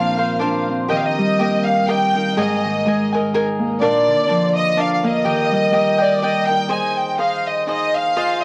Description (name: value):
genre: mexican folk, mariachi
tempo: 124 BPM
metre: 3/4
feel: swing 55% on 8ths, rubato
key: Eb major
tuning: A4 = 440 Hz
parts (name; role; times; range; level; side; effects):
- clear studio violin section; melody; 0.0-8.4 s; D5 to Ab5; -21 LUFS; equal; cassette tape, tape echo
- cavaquinho; accompaniment; 0.0-8.4 s; D4 to Ab5; -25 LUFS; equal; cassette tape
- Celtic harp; arpeggios; 0.0-8.4 s; Ab2 to Eb5; -24 LUFS; equal; cassette tape
room: moderate studio reverb, RT60 0.5 s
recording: home recording on cassette, vinyl crackle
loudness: -18 LUFS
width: mono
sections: 0.0-6.7 A section; 6.7-8.4 B section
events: none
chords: 0.0 Bbadd9; 0.9 Eb; 2.4 Absus2; 3.8 Bb; 5.2 Eb; 6.7 Ab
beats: 0.41 | 0.90 1.40 1.89 | 2.38 2.86 3.34 | 3.81 4.29 4.77 | 5.25 5.73 6.22 | 6.71 7.20 7.68 | 8.17